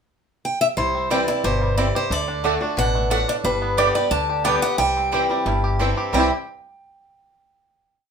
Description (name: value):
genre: bluegrass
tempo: 179 BPM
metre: 4/4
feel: straight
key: C lydian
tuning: A4 = 441 Hz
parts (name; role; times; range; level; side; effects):
- picked steel-string acoustic guitar; melody; 0.5-6.3 s; B4 to A5; -22 LUFS; equal; none
- picked swing-style acoustic guitar; accompaniment; 0.8-6.3 s; G2 to G4; -26 LUFS; left 2 dB; none
- bluegrass banjo; arpeggios; 0.8-6.3 s; D3 to G4; -26 LUFS; right 2 dB; none
- upright bass; bass; 0.8-6.3 s; G1 to D2; -26 LUFS; left 1 dB; none
- mandolin; stabs; 1.1-6.3 s; A3 to G5; -23 LUFS; right 4 dB; none
room: moderate studio reverb, RT60 0.5 s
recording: band playing live in one room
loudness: -18 LUFS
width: side -6 dB against mid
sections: 0.0-0.8 pickup bar; 0.8-6.1 A section; 6.1-7.5 final chord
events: none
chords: 0.0 N.C.; 0.8 C; 2.1 D; 3.4 G; 4.8 C